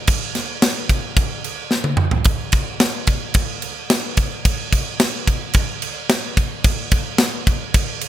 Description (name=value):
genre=metal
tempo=110 BPM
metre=4/4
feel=straight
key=none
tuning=none
part: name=tight metal drum kit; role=drums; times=0.1-8.1 s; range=crash cymbal, kick drum, snare drum, toms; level=-17 LUFS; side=equal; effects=none
room=little or no reverb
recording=none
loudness=-17 LUFS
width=side -12 dB against mid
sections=0.0-8.1 A section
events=drum fill 1.7-2.3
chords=none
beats=| 0.07 0.62 1.16 1.71 | 2.26 2.81 3.35 3.90 | 4.45 5.00 5.54 6.09 | 6.64 7.19 7.74